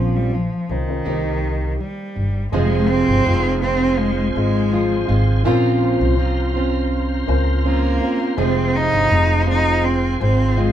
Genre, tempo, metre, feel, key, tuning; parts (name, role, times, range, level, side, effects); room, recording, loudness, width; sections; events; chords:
pop; 82 BPM; 4/4; straight; F minor; A4 = 439 Hz
rich cello; melody; 0.0-10.7 s; Eb3 to Eb4; -21 LUFS; equal
dark upright piano; accompaniment; 0.0-10.7 s; Ab3 to Eb5; -29 LUFS; left 4 dB
fingerpicked plugged-in steel-string acoustic guitar; accompaniment; 0.0-10.7 s; F2 to G4; -21 LUFS; right 2 dB
upright bass; bass; 0.0-10.7 s; F1 to Db2; -20 LUFS; equal
tonewheel organ; sustained chords; 2.5-10.7 s; F4 to C6; -30 LUFS; equal; overdrive, chorus vibrato, slow rotary speaker
moderate studio ambience, RT60 0.5 s; band playing live in one room; -16 LUFS; side -10 dB against mid
0.0-2.5 A section; 2.5-10.7 B section
0.0 Bbmadd9; 1.1 Cm7; 2.5 Fm; 5.5 Bbmadd9; 8.4 Fm